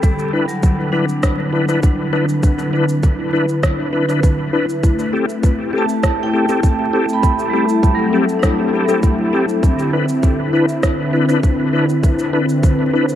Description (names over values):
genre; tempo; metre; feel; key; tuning
ambient dub; 100 BPM; 4/4; straight; unclear; A4 = 441 Hz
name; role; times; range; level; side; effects
warm analog pad; sustained chords; 0.0-13.2 s; D3 to G5; -18 LUFS; equal; chorus
vibraphone with hard mallets; arpeggios; 0.0-10.6 s; F#3 to B5; -23 LUFS; right 2 dB; dub echo
electronic kick drum; drums; 0.0-12.8 s; none; -16 LUFS; equal; none
electronic shaker and rim click; drums; 0.0-13.2 s; none; -26 LUFS; right 1 dB; dub echo
bright tonewheel organ; stabs; 0.3-13.1 s; C4 to B4; -20 LUFS; left 2 dB; chorus vibrato, fast rotary speaker, dub echo
room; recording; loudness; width
light reverb, digital ambience; dark, warm production, vinyl crackle; -14 LUFS; side -11 dB against mid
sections
0.0-13.2 A section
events
filter sweep on vibraphone 0.0-13.2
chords
0.0 Cmaj9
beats
| 0.03 0.63 1.23 1.83 | 2.43 3.03 3.63 4.23 | 4.83 5.43 6.03 6.63 | 7.23 7.83 8.43 9.03 | 9.63 10.23 10.83 11.43 | 12.03 12.63